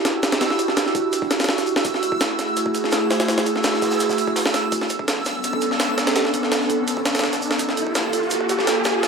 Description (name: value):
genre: drum and bass, jungle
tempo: 167 BPM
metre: 4/4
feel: straight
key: E dorian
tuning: A4 = 441 Hz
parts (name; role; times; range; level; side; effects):
- airy breathy pad; sustained chords; 0.0-9.1 s; A3 to A4; -22 LUFS; right 2 dB; chorus, vintage 12-bit sampler grit
- backwards swelling texture; texture; 0.2-9.1 s; E6; -29 LUFS; right 2 dB; built-in reverb
- crunchy breakbeat drum kit; drums; 0.1-9.1 s; hi-hat, shaker, snare drum; -32 LUFS; right 2 dB; none
- jungle sampler-style drum kit; drums; 0.1-9.1 s; hi-hat, kick drum, snare drum; -22 LUFS; equal; high-pass filter on kick, high-pass filter on hats, high-pass filter on snare, high-pass filter on room
- riser; sound effects; 5.8-9.1 s; none; -27 LUFS; equal; none
room: moderate digital room reverb, RT60 1.1 s, small room ambience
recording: high-pass filter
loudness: -18 LUFS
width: side -5 dB against mid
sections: 0.0-9.1 A section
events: build-up 0.0-9.1; riser 5.8-9.1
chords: 0.0 Em9; 1.8 F#m9; 4.7 Bm9; 7.6 Gm9